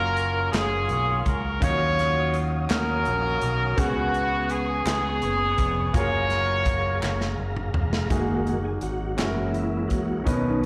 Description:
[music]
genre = slow gospel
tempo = 56 BPM (dotted quarters)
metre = 6/8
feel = straight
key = F# major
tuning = A4 = 440 Hz
[part]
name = clear horn section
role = melody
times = 0.0-7.4 s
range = B3 to C#5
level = -27 LUFS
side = equal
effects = plate reverb, slapback echo
[part]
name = clear baby grand piano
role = accompaniment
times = 0.0-10.7 s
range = B2 to E#5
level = -34 LUFS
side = equal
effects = plate reverb
[part]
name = tonewheel organ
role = sustained chords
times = 0.0-10.7 s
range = D#3 to D#6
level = -34 LUFS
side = equal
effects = slow rotary speaker, chorus vibrato, plate reverb
[part]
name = fingered electric bass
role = bass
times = 0.0-10.7 s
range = E#1 to D#2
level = -30 LUFS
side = equal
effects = none
[part]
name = natural country drum kit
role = drums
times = 0.2-10.7 s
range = hi-hat, kick drum, snare drum, toms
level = -30 LUFS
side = equal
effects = none
[part]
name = group handclap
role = percussion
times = 0.5-9.5 s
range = none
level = -36 LUFS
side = equal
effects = none
[part]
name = mellow French horn section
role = sustained chords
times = 8.1-10.7 s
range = B2 to E4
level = -41 LUFS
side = equal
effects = none
[sound]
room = light reverb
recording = live gig heard through the venue's PA, recital hall reverb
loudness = -24 LUFS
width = mono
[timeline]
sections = 0.0-8.1 A section; 8.1-10.7 B section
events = drum fill 7.0-8.1; tonewheel organ solo 8.1-10.7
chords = 0.0 F#maj7; 1.6 D#m9; 3.8 C#7sus4; 5.9 F#maj9; 8.1 F#69; 9.2 F#7

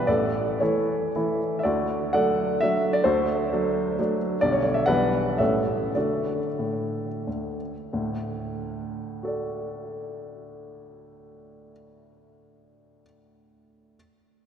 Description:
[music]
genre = classical, romantic triple-time dance for piano with dotted rhythms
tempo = 86-143 BPM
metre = 3/4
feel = rubato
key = D major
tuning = A4 = 440 Hz
[part]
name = warm baby grand piano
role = solo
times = 0.0-14.0 s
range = A1 to F#5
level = -23 LUFS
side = equal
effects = none
[sound]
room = wet church reverb, RT60 3.9 s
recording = none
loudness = -23 LUFS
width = side -8 dB against mid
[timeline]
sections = 0.0-7.9 A section; 7.9-11.8 B section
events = slowing down 3.8-7.9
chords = 0.1 A; 1.6 D; 4.4 G/B; 4.9 Em7/B; 5.4 A7; 6.0 D

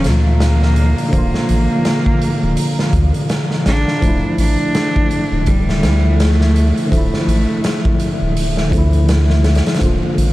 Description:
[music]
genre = trip hop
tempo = 83 BPM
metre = 4/4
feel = swing 58% on 16ths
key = D minor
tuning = A4 = 440 Hz
[part]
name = rich cello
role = melody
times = 0.0-8.3 s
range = G3 to D4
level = -21 LUFS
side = right 1 dB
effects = tape echo
[part]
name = tine electric piano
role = accompaniment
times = 0.0-10.3 s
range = Bb2 to F4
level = -20 LUFS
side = equal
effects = tremolo
[part]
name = warbly tape-like pad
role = sustained chords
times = 0.0-10.3 s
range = D3 to Bb5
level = -24 LUFS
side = left 1 dB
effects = chorus, built-in reverb
[part]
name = soft dub sub bass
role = bass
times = 0.0-10.3 s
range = D1 to D2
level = -15 LUFS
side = equal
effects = none
[part]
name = raw garage drum kit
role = drums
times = 0.0-10.3 s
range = hi-hat, kick drum, snare drum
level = -18 LUFS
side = equal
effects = none
[sound]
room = small room ambience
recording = dark, warm production, vinyl crackle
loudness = -13 LUFS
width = side -17 dB against mid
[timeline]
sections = 0.0-10.3 A section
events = none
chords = 0.0 Bb/D; 4.0 Dmadd9; 9.8 Bb/D

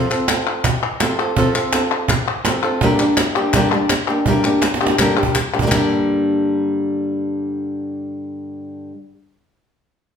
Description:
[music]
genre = flamenco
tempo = 165 BPM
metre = 4/4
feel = straight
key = G minor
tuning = A4 = 440 Hz
[part]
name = flamenco guitar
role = melody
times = 0.0-8.9 s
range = G2 to A4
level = -18 LUFS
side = left 1 dB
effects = none
[part]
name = cajon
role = percussion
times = 0.1-5.8 s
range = none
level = -21 LUFS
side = right 3 dB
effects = none
[part]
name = palmas hand claps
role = percussion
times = 0.1-5.8 s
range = none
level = -21 LUFS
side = left 4 dB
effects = none
[sound]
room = wet large studio reverb, RT60 0.8 s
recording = band playing live in one room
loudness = -16 LUFS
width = side -7 dB against mid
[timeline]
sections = 0.0-5.7 A section; 5.7-8.6 B section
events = drum fill 4.6-5.7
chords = 0.0 F; 2.8 Gm

